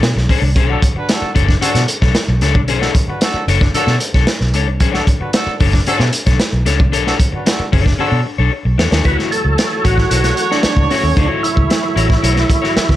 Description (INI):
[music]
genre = funk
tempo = 113 BPM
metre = 4/4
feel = straight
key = B minor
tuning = A4 = 439 Hz
[part]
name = electric guitar at the edge of break-up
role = accompaniment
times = 0.0-12.8 s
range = D4 to C#5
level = -20 LUFS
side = left 8 dB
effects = spring reverb
[part]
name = vintage muted fingered electric bass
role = bass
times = 0.0-13.0 s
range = F#1 to B2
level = -16 LUFS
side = equal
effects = none
[part]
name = crunchy breakbeat drum kit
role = drums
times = 0.0-13.0 s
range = hi-hat, kick drum, snare drum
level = -16 LUFS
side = equal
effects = none
[part]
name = warm horn section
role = second line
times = 0.7-13.0 s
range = D4 to C#5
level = -22 LUFS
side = right 2 dB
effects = none
[part]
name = percussive tonewheel organ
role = sustained chords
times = 9.0-13.0 s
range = E3 to C#5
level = -27 LUFS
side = right 3 dB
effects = none
[part]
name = overdriven tonewheel organ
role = melody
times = 9.1-13.0 s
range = C#4 to B4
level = -18 LUFS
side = right 2 dB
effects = chorus vibrato, fast rotary speaker
[sound]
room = little or no reverb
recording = none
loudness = -12 LUFS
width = side -14 dB against mid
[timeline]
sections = 0.0-9.0 A section; 9.0-13.0 B section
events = drum fill 8.0-9.0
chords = 0.0 Bm9; 9.0 Dmaj9